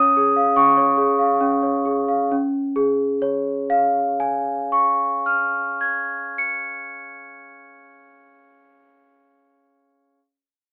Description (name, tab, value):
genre	classical, lullaby for celesta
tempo	64 BPM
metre	3/4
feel	straight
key	Db major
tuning	A4 = 440 Hz
part	large celesta	solo	0.0-10.2 s	Db4 to Db7	-20 LUFS	equal	none
room	light reverb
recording	telephone sound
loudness	-20 LUFS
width	mono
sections	0.0-2.3 A section; 2.3-8.0 B section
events	slowing down 0.0-2.3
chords	0.0 Db